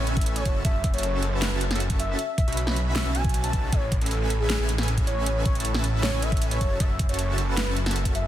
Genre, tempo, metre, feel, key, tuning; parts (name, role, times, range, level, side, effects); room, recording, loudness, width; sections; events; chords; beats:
future bass; 156 BPM; 4/4; half-time; A major; A4 = 440 Hz
warm velvety synth lead; melody; 0.0-8.3 s; G#4 to A5; -32 LUFS; equal; chorus, cassette tape, sidechain pumping, ping-pong delay
dense compressed supersaw; riff; 0.0-8.3 s; C#4 to B5; -31 LUFS; equal; sidechain pumping
wide detuned saw bass; bass; 0.0-8.3 s; F#1 to B1; -26 LUFS; equal; chorus, tube saturation, sidechain pumping
dubstep drum kit; drums; 0.1-8.2 s; hi-hat, snare drum; -30 LUFS; equal
electronic kick drum; drums; 0.2-8.1 s; -24 LUFS; equal
little or no reverb; dense, heavily limited modern master; -22 LUFS; side -12 dB against mid
0.0-8.3 A section
0.5 F#m7; 2.2 B9sus4; 3.7 Amaj9; 6.6 F#m7
0.26 | 0.65 1.03 1.42 1.80 | 2.19 2.57 2.96 3.34 | 3.73 4.11 4.49 4.88 | 5.26 5.65 6.03 6.42 | 6.80 7.19 7.57 7.96